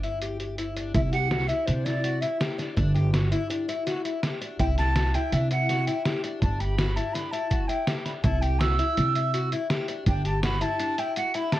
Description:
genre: progressive instrumental, band music in an uneven meter.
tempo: 164 BPM.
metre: 5/4.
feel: straight.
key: C lydian.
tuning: A4 = 440 Hz.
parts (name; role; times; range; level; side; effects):
fingerpicked twelve-string acoustic guitar; arpeggios; 0.0-11.6 s; D4 to G4; -30 LUFS; left 4 dB; plate reverb, digital delay.
upright bass; bass; 0.0-10.6 s; G1 to C3; -26 LUFS; right 1 dB; none.
lo-fi sampler-style drum kit; drums; 0.0-11.6 s; hi-hat, kick drum, snare drum; -29 LUFS; equal; none.
breathy mellow jazz flute; melody; 0.9-11.6 s; C5 to E6; -29 LUFS; right 2 dB; plate reverb.
room: moderate studio reverb, RT60 0.5 s.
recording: worn, warbling old tape, cassette tape, warbly pitch drift.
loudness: -23 LUFS.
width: side -14 dB against mid.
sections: 0.9-11.6 A section.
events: flute solo 0.9-11.6.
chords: 0.0 G5; 0.9 C; 2.8 G5; 4.6 C; 6.4 G; 8.2 C; 10.1 G5.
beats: 0.21 0.58 | 0.95 1.31 1.68 2.04 2.41 | 2.77 3.14 3.50 3.87 4.23 | 4.60 4.96 5.33 5.69 6.06 | 6.42 6.78 7.15 7.51 7.88 | 8.24 8.61 8.97 9.34 9.70 | 10.07 10.43 10.80 11.16 11.52.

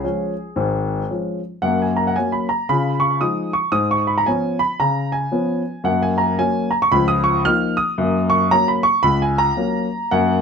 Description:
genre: jazz, stride piano.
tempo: 113 BPM.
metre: 4/4.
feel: swing 64% on 8ths.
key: F# major.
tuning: A4 = 441 Hz.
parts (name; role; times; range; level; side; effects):
warm grand piano; solo; 0.0-10.4 s; G#1 to E#6; -16 LUFS; equal; none.
room: moderate club ambience, RT60 0.5 s.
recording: none.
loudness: -17 LUFS.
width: side -6 dB against mid.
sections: 0.0-1.6 A section; 1.6-10.4 B section.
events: none.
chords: 0.0 C#; 1.6 F#; 2.7 C#add9; 3.7 C#7/G#; 5.9 F#; 6.9 C#69; 8.0 F#.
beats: 0.03 0.56 1.09 | 1.62 2.15 2.67 3.20 | 3.73 4.26 4.79 5.32 | 5.85 6.38 6.91 7.44 | 7.97 8.50 9.04 9.57 | 10.10.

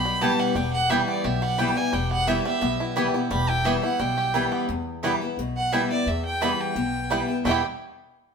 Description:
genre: bluegrass.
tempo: 174 BPM.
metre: 4/4.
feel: straight.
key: E minor.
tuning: A4 = 440 Hz.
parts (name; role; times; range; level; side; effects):
clear fiddle; melody; 0.0-7.6 s; D5 to B5; -27 LUFS; right 2 dB; none.
picked acoustic archtop guitar; accompaniment; 0.0-7.6 s; E2 to E4; -26 LUFS; left 3 dB; none.
bluegrass banjo; arpeggios; 0.0-7.7 s; G3 to G4; -29 LUFS; right 5 dB; none.
upright bass; bass; 0.0-7.6 s; E1 to E2; -30 LUFS; left 2 dB; none.
mandolin; stabs; 0.2-7.6 s; B3 to G5; -29 LUFS; right 4 dB; none.
room: moderate stone room reverb, RT60 1.1 s.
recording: band playing live in one room.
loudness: -22 LUFS.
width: side -6 dB against mid.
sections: 0.0-4.7 A section; 4.7-7.4 B section.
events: none.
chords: 0.0 Em.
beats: 0.21 | 0.55 0.90 1.24 1.58 | 1.93 2.27 2.62 2.96 | 3.31 3.65 4.00 4.34 | 4.68 5.03 5.38 5.72 | 6.07 6.41 6.76 7.10 | 7.45.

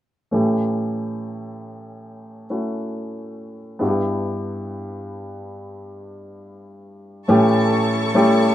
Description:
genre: pop ballad.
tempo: 69 BPM.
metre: 4/4.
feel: straight.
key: unclear.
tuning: A4 = 445 Hz.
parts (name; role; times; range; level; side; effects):
warm grand piano; accompaniment; 0.3-8.5 s; G2 to G4; -20 LUFS; equal; plate reverb.
rich studio string section; sustained chords; 7.3-8.5 s; E4 to C#6; -24 LUFS; right 1 dB; plate reverb.
fingerpicked steel-string acoustic guitar; arpeggios; 7.3-8.5 s; A2 to C#4; -26 LUFS; right 1 dB; none.
room: wet small room reverb, RT60 0.5 s.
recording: rough home demo mix.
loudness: -18 LUFS.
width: side -13 dB against mid.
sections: 0.3-7.3 A section; 7.3-8.5 B section.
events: none.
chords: 0.3 A7; 3.8 Em7/G; 7.3 A7.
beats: | 0.33 1.20 2.07 2.94 | 3.81 4.68 5.55 6.42 | 7.29 8.16.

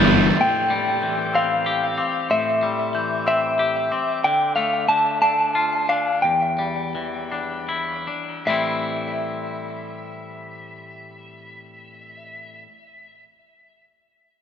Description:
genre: rock.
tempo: 49-62 BPM (dotted quarters).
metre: 6/8.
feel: straight.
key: A minor.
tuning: A4 = 440 Hz.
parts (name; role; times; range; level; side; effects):
glockenspiel with rubber mallets; arpeggios; 0.0-4.2 s; C6 to G6; -28 LUFS; equal; digital delay.
electric slide guitar; melody; 0.4-12.6 s; E5 to A5; -22 LUFS; left 1 dB; digital delay.
twangy electric guitar; arpeggios; 0.4-12.7 s; E2 to G4; -26 LUFS; left 3 dB; digital delay.
room: moderate concert hall reverb, RT60 2.1 s.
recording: none.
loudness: -19 LUFS.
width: side -8 dB against mid.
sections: 0.4-8.5 A section; 8.5-13.3 B section.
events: slowing down 4.2-8.5.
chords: 0.4 Am7; 4.2 Dm; 6.2 Em7; 8.5 Am7.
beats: | 0.38 1.34 | 2.30 3.27 | 4.23 5.21 | 6.23 7.30 | 8.46 9.68 | 10.90 12.11.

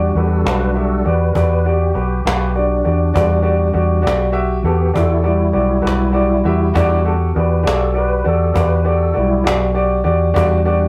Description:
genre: slow blues.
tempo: 67 BPM (dotted quarters).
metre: 12/8.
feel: straight.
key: E minor.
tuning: A4 = 442 Hz.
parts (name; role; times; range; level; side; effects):
clear baby grand piano; accompaniment; 0.0-10.9 s; F#4 to E5; -20 LUFS; equal; none.
tonewheel organ; sustained chords; 0.0-10.9 s; G3 to B4; -24 LUFS; equal; overdrive, chorus vibrato, slow rotary speaker.
vintage muted fingered electric bass; bass; 0.0-10.9 s; B1 to E2; -19 LUFS; equal; none.
cajon; drums; 0.2-10.7 s; none; -24 LUFS; equal; none.
room: moderate studio reverb, RT60 0.6 s.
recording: rough rehearsal-room recording.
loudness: -16 LUFS.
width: mono.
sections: 0.0-10.9 A section.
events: tonewheel organ solo 0.0-10.9.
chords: 0.0 Em7.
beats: 0.45 1.35 2.25 | 3.15 4.05 4.96 5.86 | 6.75 7.65 8.55 9.45 | 10.35.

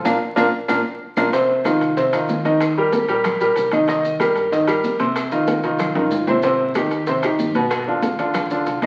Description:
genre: latin, salsa.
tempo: 188 BPM.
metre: 4/4.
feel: straight.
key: unclear.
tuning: A4 = 440 Hz.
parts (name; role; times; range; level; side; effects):
bright baby grand piano; accompaniment; 0.0-8.9 s; Cb3 to Eb5; -20 LUFS; equal; none.
vintage muted fingered electric bass; bass; 0.0-8.9 s; Ab1 to G2; -39 LUFS; equal; none.
bongos; percussion; 0.1-8.9 s; none; -32 LUFS; equal; none.
claves; percussion; 0.1-8.9 s; none; -34 LUFS; equal; none.
congas; percussion; 0.1-8.9 s; none; -30 LUFS; equal; none.
maracas; percussion; 0.1-8.9 s; none; -41 LUFS; equal; none.
timbales; percussion; 0.1-8.9 s; none; -31 LUFS; equal; none.
room: wet large studio reverb, RT60 1.1 s.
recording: very old 78 rpm record, vinyl crackle.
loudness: -19 LUFS.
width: mono.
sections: 0.0-1.3 A section; 1.3-8.9 B section.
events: band accent 0.1-1.3; drum fill 0.5-1.3, 6.0-6.4.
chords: 0.1 Bb; 1.3 F5; 2.6 Eb; 3.9 Cm7; 5.2 F7(no3); 6.4 Abmaj7; 7.7 G7.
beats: | 0.05 0.37 0.69 1.01 | 1.33 1.65 1.97 2.29 | 2.61 2.93 3.25 3.56 | 3.88 4.20 4.52 4.84 | 5.16 5.48 5.80 6.12 | 6.43 6.75 7.07 7.39 | 7.71 8.03 8.35 8.66.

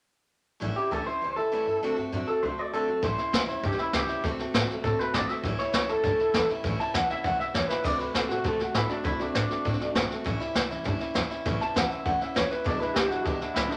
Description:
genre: rockabilly.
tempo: 199 BPM.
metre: 4/4.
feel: straight.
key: A mixolydian.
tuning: A4 = 440 Hz.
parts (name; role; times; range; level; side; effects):
picked steel-string acoustic guitar; accompaniment; 0.6-13.8 s; E2 to F#4; -36 LUFS; equal; none.
upright bass; bass; 0.6-13.7 s; E1 to C3; -36 LUFS; equal; none.
electric guitar through a small old amp; melody; 0.8-13.8 s; D4 to A5; -30 LUFS; equal; none.
jazz brush drum kit; drums; 3.0-13.7 s; crash cymbal, hi-hat, kick drum, snare drum; -32 LUFS; equal; none.
room: moderate large studio reverb, RT60 1.2 s.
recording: none.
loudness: -28 LUFS.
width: mono.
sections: 0.6-3.0 A section; 3.0-13.8 B section.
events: drum fill 7.7.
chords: 0.6 A7; 1.8 D7; 3.0 A7; 4.2 D7; 5.4 A7; 7.9 D7; 10.3 A7; 12.7 E7.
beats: | 0.61 0.92 1.22 1.52 | 1.82 2.13 2.43 2.73 | 3.03 3.33 3.63 3.94 | 4.24 4.54 4.84 5.14 | 5.44 5.74 6.04 6.35 | 6.65 6.95 7.25 7.55 | 7.85 8.15 8.45 8.75 | 9.05 9.35 9.65 9.96 | 10.26 10.56 10.86 11.16 | 11.46 11.76 12.06 12.36 | 12.66 12.96 13.26 13.56.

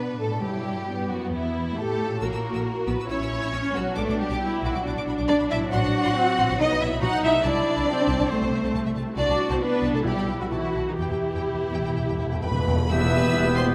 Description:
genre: classical, dramatic, fast romantic movement for symphony orchestra.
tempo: 118-142 BPM.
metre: 4/4.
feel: rubato.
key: B minor, E minor from 5.7 s.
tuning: A4 = 440 Hz.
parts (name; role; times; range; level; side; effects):
rich studio violin section; melody; 0.0-13.6 s; E4 to E6; -40 LUFS; equal; none.
warm symphonic violin section; second line; 0.0-13.6 s; D#4 to F#5; -30 LUFS; equal; none.
warm symphonic viola section; accompaniment; 0.0-13.7 s; G3 to G4; -31 LUFS; equal; none.
concert harp; arpeggios; 0.0-13.7 s; A2 to F#5; -38 LUFS; equal; none.
warm studio double bass section; bass; 0.0-13.7 s; E1 to B2; -33 LUFS; equal; none.
warm symphonic cello section; bass; 0.0-13.7 s; E2 to F#4; -32 LUFS; equal; none.
timpani; percussion; 0.4-1.1, 6.6-7.2, 10.0-12.8 s; E2 to B2; -31 LUFS; equal; none.
cymbal swell and tam-tam; percussion; 9.2-13.7 s; none; barely audible; none; none.
silver concert flute; second line; 12.4-13.6 s; B4 to E5; -34 LUFS; equal; none.
clear clarinet; second line; 12.9-13.7 s; B3; -31 LUFS; equal; none.
warm oboe; second line; 12.9-13.7 s; G4; -34 LUFS; equal; none.
dark trombone section; sustained chords; 12.9-13.7 s; B2 to E3; -33 LUFS; equal; none.
mellow French horn section; sustained chords; 12.9-13.7 s; B3 to G4; -33 LUFS; equal; none.
bright trumpet section; stabs; 12.9-13.7 s; B4; -31 LUFS; equal; none.
room: wet concert hall reverb, RT60 2.4 s.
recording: none.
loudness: -24 LUFS.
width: mono.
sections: 0.0-12.9 A section.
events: timpani fill 11.0-12.9; band accent 12.9-13.3.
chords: 0.4 C#m7b5; 2.2 F#7/A#; 4.0 Bm; 5.7 F#dim/A; 6.6 B; 7.5 Am/C; 9.2 F#m7b5/C; 10.1 Em/B; 11.0 Em.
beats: | 0.43 0.88 1.32 1.76 | 2.21 2.65 3.09 3.53 | 3.97 4.42 4.86 5.29 | 5.73 6.17 6.60 7.03 | 7.46 7.88 8.31 8.75 | 9.18 9.62 10.06 10.51 | 10.98 11.47 11.95 12.43 | 12.92 13.35.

